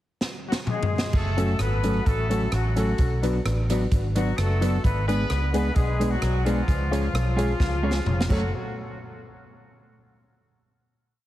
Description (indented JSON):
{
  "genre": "ska",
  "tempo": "130 BPM",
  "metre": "4/4",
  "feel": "straight",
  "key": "F# harmonic minor",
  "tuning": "A4 = 440 Hz",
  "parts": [
    { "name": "swinging big-band drum kit", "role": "drums", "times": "0.2-8.4 s", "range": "crash cymbal, hi-hat, kick drum, rim click, snare drum, toms", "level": "-28 LUFS", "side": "equal", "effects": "none" },
    { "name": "clear horn section", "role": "melody", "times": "0.5-8.5 s", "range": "E#3 to B4", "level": "-31 LUFS", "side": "left 2 dB", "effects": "dub echo" },
    { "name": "vintage muted fingered electric bass", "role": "bass", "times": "1.1-8.5 s", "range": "E#1 to C#2", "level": "-25 LUFS", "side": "equal", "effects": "none" },
    { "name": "mellow electric guitar", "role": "accompaniment", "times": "1.4-8.4 s", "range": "F#3 to G#4", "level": "-29 LUFS", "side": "right 1 dB", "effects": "wide subtle chorus" },
    { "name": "warm upright piano", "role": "stabs", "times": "1.4-8.5 s", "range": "C#4 to C#5", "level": "-31 LUFS", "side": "left 4 dB", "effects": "dub echo" }
  ],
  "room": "light reverb",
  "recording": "heavily compressed radio sound, multiband compression",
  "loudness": "-21 LUFS",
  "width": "side -14 dB against mid",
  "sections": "0.0-1.1 pickup bar; 1.1-8.5 head; 8.5-10.3 final hit",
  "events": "drum fill 0.2-1.1, 7.6-8.5",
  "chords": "0.0 N.C.; 1.1 F#m; 3.0 Bm; 4.8 G#dim; 6.7 C#; 8.3 F#m; 8.5 N.C."
}